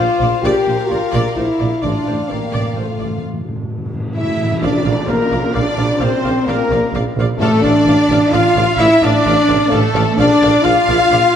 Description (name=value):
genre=cinematic, epic orchestral film score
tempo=129 BPM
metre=3/4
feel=straight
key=unclear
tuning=A4 = 439 Hz
part: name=warm symphonic violin section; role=melody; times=0.0-11.4 s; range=A4 to F5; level=-26 LUFS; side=left 4 dB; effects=none
part: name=warm symphonic violin section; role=second line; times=0.0-11.4 s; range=F4 to F5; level=-24 LUFS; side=left 3 dB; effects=none
part: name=warm symphonic viola section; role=accompaniment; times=0.0-11.2 s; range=C5 to F5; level=-26 LUFS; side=right 1 dB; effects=none
part: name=warm French horn section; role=sustained chords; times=0.0-11.4 s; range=A3 to G4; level=-16 LUFS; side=left 2 dB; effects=none
part: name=warm symphonic cello section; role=bass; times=0.0-11.4 s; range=A2 to F4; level=-22 LUFS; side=right 2 dB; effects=none
part: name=warm symphonic double bass section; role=bass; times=0.0-11.2 s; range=A1 to Bb1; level=-21 LUFS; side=right 3 dB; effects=none
part: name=warm tuba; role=bass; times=0.0-11.4 s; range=A1 to Bb1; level=-23 LUFS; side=right 4 dB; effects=none
part: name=cymbal swell and tam-tam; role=percussion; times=1.8-6.4 s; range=none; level=-27 LUFS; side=left 1 dB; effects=none
part: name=timpani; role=percussion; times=1.8-4.6, 7.4-8.1 s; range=A2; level=-24 LUFS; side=equal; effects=none
part: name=mellow hollow concert flute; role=second line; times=4.1-11.4 s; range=A4 to F5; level=-24 LUFS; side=left 1 dB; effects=none
part: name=warm trumpet section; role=stabs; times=4.2-11.4 s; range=A4 to F5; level=-21 LUFS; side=right 1 dB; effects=none
room=wet scoring stage reverb, RT60 1.8 s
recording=none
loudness=-13 LUFS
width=side -8 dB against mid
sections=0.0-4.6 A section; 4.6-11.4 B section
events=timpani fill 1.8-4.6; band accent 4.6-5.1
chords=0.0 Bb; 1.8 Dm/A; 4.6 Bb; 7.4 Dm/A; 10.2 Bb